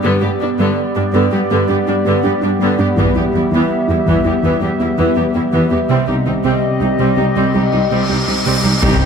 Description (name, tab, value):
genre	cinematic, hybrid orchestral and electronic film score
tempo	82 BPM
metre	4/4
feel	straight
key	unclear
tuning	A4 = 440 Hz
part	rich studio viola section	accompaniment	0.0-9.1 s	D3 to G4	-18 LUFS	right 1 dB	none
part	warbly tape-like pad	sustained chords	0.0-9.1 s	G3 to E5	-17 LUFS	left 1 dB	chorus, built-in reverb
part	soft round pluck	arpeggios	0.0-9.1 s	C3 to G4	-21 LUFS	right 2 dB	chorus, tape echo
part	rich symphonic cello section	bass	0.0-9.1 s	C2 to G2	-20 LUFS	right 1 dB	none
part	taiko ensemble	drums	3.0-4.4, 8.8-9.1 s	none	-20 LUFS	left 2 dB	none
part	cymbal swell and impact	sound effects	7.5-9.1 s	none	-21 LUFS	left 1 dB	none
part	rich symphonic double bass section	bass	8.8-9.1 s	C2	-20 LUFS	right 2 dB	none
part	saturated sub bass	bass	8.8-9.1 s	C2	-20 LUFS	left 2 dB	none
room	wet concert hall reverb, RT60 2.2 s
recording	none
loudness	-13 LUFS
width	side -6 dB against mid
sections	0.0-8.8 A section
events	cymbal swell 7.5-8.8; band accent 8.8; impact 8.8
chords	0.0 G; 3.0 Em; 5.9 Cm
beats	| 0.05 0.78 1.51 2.25 | 2.98 3.71 4.44 5.17 | 5.90 6.64 7.37 8.10 | 8.83